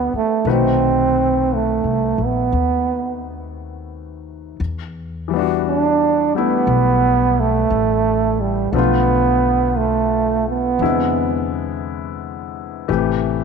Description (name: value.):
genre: jazz ballad.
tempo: 58 BPM.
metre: 4/4.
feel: swing 69% on 8ths.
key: unclear.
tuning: A4 = 441 Hz.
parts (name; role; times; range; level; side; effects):
clear trombone; melody; 0.0-11.5 s; G3 to D4; -17 LUFS; right 6 dB; slapback echo.
clear grand piano; accompaniment; 0.0-13.4 s; C3 to B4; -23 LUFS; left 15 dB; none.
upright bass; bass; 0.0-13.4 s; A1 to E2; -23 LUFS; left 2 dB; none.
room: moderate echo chamber reverb, RT60 2.3 s.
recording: 1960s-style stereo with parts hard left and right.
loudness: -15 LUFS.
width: side -5 dB against mid.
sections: 0.0-13.4 A section.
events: none.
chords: 0.5 B7b9; 4.6 Em9; 8.7 Bm7b5; 10.8 E7b13; 12.9 Am9.